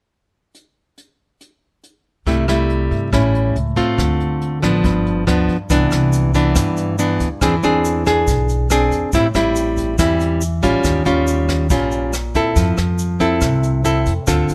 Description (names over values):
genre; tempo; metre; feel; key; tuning
bossa nova; 140 BPM; 4/4; straight; C major; A4 = 443 Hz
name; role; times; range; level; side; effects
jazz brush drum kit; drums; 0.5-14.5 s; hi-hat, kick drum, rim click; -26 LUFS; equal; none
nylon-string guitar; accompaniment; 2.3-14.5 s; G2 to A4; -19 LUFS; equal; none
upright bass; bass; 2.3-14.5 s; G1 to G2; -23 LUFS; equal; none
tube shaker; percussion; 5.7-14.5 s; none; -34 LUFS; equal; none
room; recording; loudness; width
light reverb; close, detailed microphones, lossy compression artefacts; -17 LUFS; mono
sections
0.5-2.3 A section; 2.3-5.7 B section; 5.7-14.5 C section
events
none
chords
0.5 N.C.; 2.3 C6; 3.1 A7; 4.0 Dm7; 4.8 G7; 5.7 Cmaj9; 7.4 E7b13; 9.1 Am7; 10.8 Eb9; 12.6 Fmaj7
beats
| 0.55 0.97 1.41 1.83 | 2.26 2.69 3.12 3.55 | 3.98 4.41 4.84 5.27 | 5.70 6.13 6.56 6.99 | 7.42 7.84 8.27 8.70 | 9.13 9.56 9.99 10.42 | 10.85 11.28 11.71 12.13 | 12.56 12.99 13.42 13.85 | 14.28